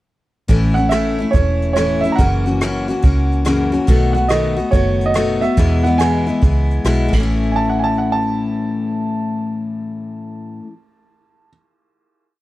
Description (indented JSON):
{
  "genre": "honky-tonk and classic country",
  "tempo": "142 BPM",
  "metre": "4/4",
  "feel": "swing 65% on 8ths",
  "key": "A major",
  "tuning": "A4 = 441 Hz",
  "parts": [
    { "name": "picked steel-string acoustic guitar", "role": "accompaniment", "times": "0.5-10.7 s", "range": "E2 to F#4", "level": "-18 LUFS", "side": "left 3 dB", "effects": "none" },
    { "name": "vintage muted fingered electric bass", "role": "bass", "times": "0.5-10.5 s", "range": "E1 to E2", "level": "-19 LUFS", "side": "equal", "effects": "none" },
    { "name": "vintage brush drum kit", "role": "drums", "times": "0.5-7.2 s", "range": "hi-hat, kick drum, ride cymbal, rim click", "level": "-16 LUFS", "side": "right 1 dB", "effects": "none" },
    { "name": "clear upright piano", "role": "second line", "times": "0.7-11.5 s", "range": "C#5 to Bb5", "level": "-21 LUFS", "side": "right 4 dB", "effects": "none" }
  ],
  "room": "small room ambience",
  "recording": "dry, close 1970s-style studio recording",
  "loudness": "-14 LUFS",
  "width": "side -16 dB against mid",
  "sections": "0.5-7.3 verse; 7.3-10.7 final chord",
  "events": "upright piano solo 0.5-7.3",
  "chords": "0.5 A; 2.2 F#7; 3.9 B7; 5.6 E; 7.1 A",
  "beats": "| 0.49 0.92 1.34 1.76 | 2.19 2.61 3.03 3.46 | 3.88 4.30 4.73 5.15 | 5.58 6.00 6.42 6.85 | 7.27 7.70 8.12 8.55 | 8.97 9.40 9.82 10.25"
}